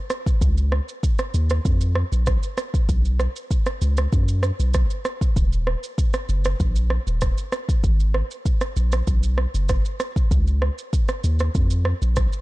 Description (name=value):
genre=afrobeats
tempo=97 BPM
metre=4/4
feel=straight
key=unclear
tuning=A4 = 444 Hz
part: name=afro-pop drum kit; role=drums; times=0.1-12.4 s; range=kick drum, rim click, shaker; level=-22 LUFS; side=equal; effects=none
part: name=punchy sub bass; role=bass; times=0.4-12.3 s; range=Eb1 to F#2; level=-20 LUFS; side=equal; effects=none
room=little or no reverb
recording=dark, warm production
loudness=-19 LUFS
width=side -20 dB against mid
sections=0.0-12.4 A section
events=none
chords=none